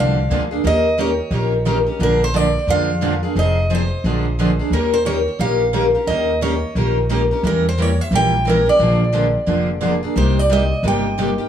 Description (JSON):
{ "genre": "acoustic string swing (jazz manouche)", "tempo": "176 BPM", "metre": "4/4", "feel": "swing 62% on 8ths", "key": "Bb mixolydian", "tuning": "A4 = 444 Hz", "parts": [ { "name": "picked steel-string acoustic guitar", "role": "melody", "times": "0.0-11.4 s", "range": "Bb4 to G5", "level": "-20 LUFS", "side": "right 1 dB", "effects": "tape echo" }, { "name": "picked steel-string acoustic guitar", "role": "accompaniment", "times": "0.0-11.5 s", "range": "C3 to Bb4", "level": "-21 LUFS", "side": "left 2 dB", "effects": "none" }, { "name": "picked steel-string acoustic guitar", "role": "accompaniment", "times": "0.0-11.3 s", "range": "C3 to Bb4", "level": "-23 LUFS", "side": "right 3 dB", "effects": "none" }, { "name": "upright bass", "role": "bass", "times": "0.0-11.4 s", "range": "F1 to F2", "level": "-20 LUFS", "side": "equal", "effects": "none" } ], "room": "moderate studio reverb, RT60 0.6 s", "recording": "small room ambience", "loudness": "-15 LUFS", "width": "side -9 dB against mid", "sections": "0.0-11.5 A section", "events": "none", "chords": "0.0 Bb7; 0.6 Eb7; 2.0 Bb7; 3.4 Fm7; 4.0 Bb7; 4.7 Eb7; 7.4 Edim7; 8.8 Bb7; 10.2 Cm7" }